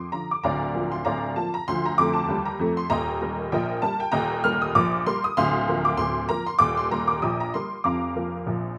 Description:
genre	ragtime piano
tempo	97 BPM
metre	2/4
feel	swing 56% on 16ths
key	Bb major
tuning	A4 = 439 Hz
part	honky-tonk upright piano	solo	0.0-8.8 s	D1 to F6	-25 LUFS	equal	none
room	light reverb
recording	none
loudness	-24 LUFS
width	mono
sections	0.4-8.8 A section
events	none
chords	0.4 Bb/D; 2.9 Eb; 5.4 Bb/D; 6.6 Eb; 7.8 Bb/F

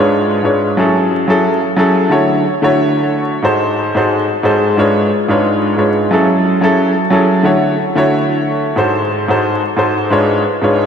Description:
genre	hip hop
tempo	90 BPM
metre	4/4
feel	swing 55% on 16ths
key	F# minor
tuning	A4 = 441 Hz
part	clear upright piano	solo	0.0-10.9 s	G#2 to C#5	-11 LUFS	equal	cassette tape, ping-pong delay
room	wet lush hall reverb, RT60 2.9 s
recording	dreamy mix soaked in reverb, vinyl crackle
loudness	-11 LUFS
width	side -7 dB against mid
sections	0.0-10.9 A section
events	none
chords	0.0 C#7b9/G#; 0.8 F#m9; 2.1 Dmaj7; 3.4 G#7b9; 4.8 C#7b9/G#; 6.1 F#m9; 7.4 Dmaj7; 8.8 G#7b9; 10.1 C#7b9/G#

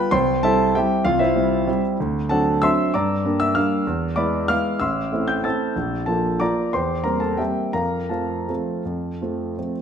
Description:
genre	classical, piano waltz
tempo	158-203 BPM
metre	3/4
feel	rubato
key	F major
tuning	A4 = 438 Hz
part	warm grand piano	solo	0.0-9.8 s	A1 to A6	-19 LUFS	equal	none
room	moderate recital hall reverb, RT60 1.4 s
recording	none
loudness	-19 LUFS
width	side -7 dB against mid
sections	0.0-9.8 A section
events	none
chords	0.1 C; 2.0 D7; 2.9 Gm; 3.9 E7; 4.8 Am; 5.8 Bb; 6.7 C7/E; 7.7 F

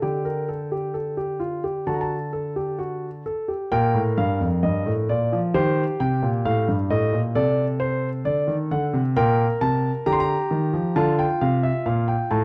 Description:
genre	classical, baroque-style 3-part fugue for grand piano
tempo	66 BPM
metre	4/4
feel	straight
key	G minor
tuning	A4 = 439 Hz
part	dark concert grand piano	solo	0.0-12.4 s	F2 to C6	-23 LUFS	equal	none
room	light reverb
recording	close, detailed microphones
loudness	-23 LUFS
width	mono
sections	0.0-3.7 A section; 3.7-12.4 B section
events	none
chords	0.0 Dsus4; 1.9 D; 3.7 Gm; 5.5 Cm; 7.4 D7/C; 9.2 Gm/Bb; 11.0 Dm

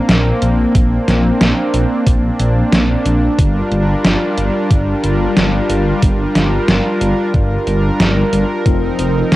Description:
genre	synthwave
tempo	91 BPM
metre	4/4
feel	straight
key	unclear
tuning	A4 = 440 Hz
part	brassy analog pad	sustained chords	0.0-9.4 s	F3 to Bb4	-16 LUFS	equal	chorus, sidechain pumping, cassette tape
part	impact	sound effects	0.0-0.7 s	none	barely audible	none	none
part	dark detuned saw bass	bass	0.1-9.4 s	F1 to Bb1	-16 LUFS	equal	tube saturation
part	detuned 8-bit digital drum machine	drums	0.1-9.4 s	hi-hat, snare drum	-16 LUFS	equal	cassette tape
part	electronic kick drum	drums	0.7-8.8 s	none	-13 LUFS	equal	cassette tape
part	tine electric piano	stabs	8.7-9.4 s	C4 to Bb4	-21 LUFS	left 11 dB	cassette tape, tape echo
room	light reverb, digital ambience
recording	home recording on cassette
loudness	-12 LUFS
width	side -16 dB against mid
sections	0.0-9.4 A section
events	impact 0.0-0.7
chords	0.0 Bbadd9; 3.4 Gm7; 8.7 F7sus4

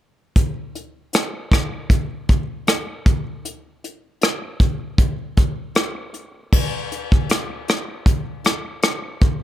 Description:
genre	indie pop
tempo	78 BPM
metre	4/4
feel	swing 55% on 16ths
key	none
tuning	none
part	soft brush drum kit	drums	0.4-9.4 s	crash cymbal, hi-hat, kick drum, rim click	-18 LUFS	equal	none
room	light reverb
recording	none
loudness	-18 LUFS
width	side -13 dB against mid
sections	0.4-6.5 A section; 6.5-9.4 B section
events	none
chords	none

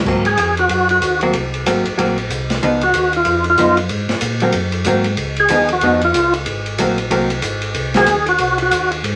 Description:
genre	soul jazz organ trio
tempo	187 BPM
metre	4/4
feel	swing 61% on 8ths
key	Ab mixolydian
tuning	A4 = 435 Hz
part	mellow tonewheel organ	bass	0.0-9.2 s	Ab1 to Bb2	-26 LUFS	equal	slow rotary speaker
part	vintage hollow-body jazz guitar	accompaniment	0.1-8.1 s	F3 to Eb4	-20 LUFS	equal	none
part	open jazz drum kit	drums	0.1-9.1 s	crash cymbal, hi-hat, kick drum, ride cymbal, snare drum	-24 LUFS	equal	none
part	percussive tonewheel organ	melody	0.3-8.9 s	F4 to Ab4	-16 LUFS	equal	slow rotary speaker, overdrive, chorus vibrato
room	wet studio ambience, RT60 0.5 s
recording	none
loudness	-16 LUFS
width	mono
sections	0.1-9.2 A section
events	tonewheel organ solo 0.1-9.2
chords	0.1 Ab9; 2.6 Db9; 3.9 Ab9; 5.2 Db9; 6.5 Ab9

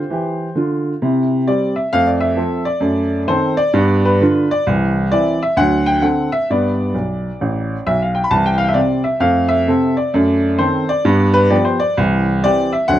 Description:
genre	jazz, stride piano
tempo	131 BPM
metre	4/4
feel	swing 64% on 8ths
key	C major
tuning	A4 = 441 Hz
part	clear baby grand piano	solo	0.0-13.0 s	A1 to B5	-14 LUFS	equal	none
room	small room ambience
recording	dry, close 1970s-style studio recording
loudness	-14 LUFS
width	side -12 dB against mid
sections	0.0-1.0 A section; 1.0-13.0 A section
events	grand piano fill 6.9-8.3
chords	0.0 C; 1.9 Fmaj7; 2.8 F#dim7; 3.7 G7; 4.7 C; 5.6 D7; 6.5 G; 8.3 C; 9.2 Fmaj7; 10.1 F#dim7; 11.1 G7; 12.0 C

